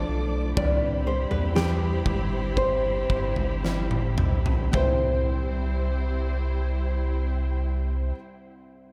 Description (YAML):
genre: pop ballad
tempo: 54-63 BPM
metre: 4/4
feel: straight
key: C major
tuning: A4 = 440 Hz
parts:
  - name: nylon-string guitar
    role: melody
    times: 0.0-8.1 s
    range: G4 to D5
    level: -32 LUFS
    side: equal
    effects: analog delay
  - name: warm studio violin section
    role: second line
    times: 0.0-8.1 s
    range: E4 to D6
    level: -41 LUFS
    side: equal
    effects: analog delay
  - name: felt-muted upright piano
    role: accompaniment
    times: 0.0-8.9 s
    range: C2 to D5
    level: -37 LUFS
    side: equal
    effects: lush chorus
  - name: warm studio string section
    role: sustained chords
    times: 0.0-8.2 s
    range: F3 to C5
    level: -37 LUFS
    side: equal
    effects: none
  - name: warm sub bass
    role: bass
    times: 0.0-8.1 s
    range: G1 to E2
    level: -29 LUFS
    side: equal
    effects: none
  - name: huge arena drum kit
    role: drums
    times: 0.6-5.0 s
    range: kick drum, snare drum, toms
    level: -30 LUFS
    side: equal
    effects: none
room: moderate church reverb, RT60 3.5 s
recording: dreamy mix soaked in reverb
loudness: -25 LUFS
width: mono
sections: 0.0-4.7 A section; 4.7-8.9 B section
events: slowing down 0.0-4.7; drum fill 3.6-4.7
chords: 0.0 Dm; 0.6 Cmaj7; 4.7 C